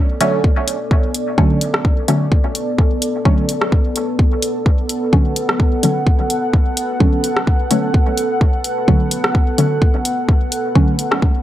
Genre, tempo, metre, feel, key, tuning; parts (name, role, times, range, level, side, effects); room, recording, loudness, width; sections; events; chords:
dub techno; 128 BPM; 4/4; swing 55% on 16ths; B minor; A4 = 442 Hz
deep dark ambient pad; sustained chords; 0.0-11.4 s; B3 to F#5; -21 LUFS; equal; chorus, built-in reverb, sidechain pumping
filtered dub chord stab; stabs; 0.2-10.9 s; D3 to C#4; -19 LUFS; equal; chorus, phaser, cassette tape, sidechain pumping, dub echo
deep house drum kit; drums; 0.2-11.2 s; hi-hat, rim click; -20 LUFS; equal; dub echo
electronic kick drum; drums; 0.4-11.3 s; -14 LUFS; equal
little or no reverb; dry, gritty hardware recording; -14 LUFS; side -13 dB against mid
0.0-11.4 A section
filter sweep on synth stab 0.0-11.4
0.0 Bm7